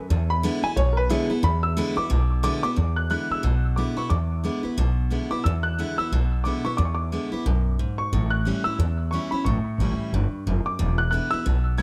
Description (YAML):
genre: rock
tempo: 180 BPM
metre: 4/4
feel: swing 59% on 8ths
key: E mixolydian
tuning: A4 = 438 Hz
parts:
  - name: picked steel-string acoustic guitar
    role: accompaniment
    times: 0.0-11.8 s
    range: E2 to E4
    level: -30 LUFS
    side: equal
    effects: none
  - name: upright bass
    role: bass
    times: 0.1-11.8 s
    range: E1 to E2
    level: -25 LUFS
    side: equal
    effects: none
  - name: warm upright piano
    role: melody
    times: 0.3-11.8 s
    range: E4 to G#6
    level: -30 LUFS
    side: equal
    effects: tape echo
room: light reverb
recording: none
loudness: -24 LUFS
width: mono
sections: 0.0-2.8 A section; 2.8-11.8 B section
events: upright piano solo 0.0-2.8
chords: 0.1 E7; 8.1 A7; 10.8 E7